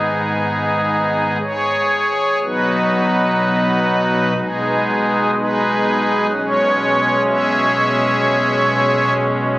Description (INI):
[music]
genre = classical, chorale-style piece for pipe organ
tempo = 62 BPM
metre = 4/4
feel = rubato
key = B major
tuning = A4 = 441 Hz
[part]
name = pipe organ, strings celeste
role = solo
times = 0.0-9.6 s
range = G#1 to E5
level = -14 LUFS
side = equal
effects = none
[sound]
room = wet cathedral reverb, RT60 4.3 s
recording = recorded on a phone in the room, club reverb, compression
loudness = -14 LUFS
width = side -18 dB against mid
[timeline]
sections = 0.0-2.4 A section; 2.4-9.6 B section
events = none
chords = 0.0 G#m; 2.4 B; 4.4 G#m/B; 6.3 C#m/B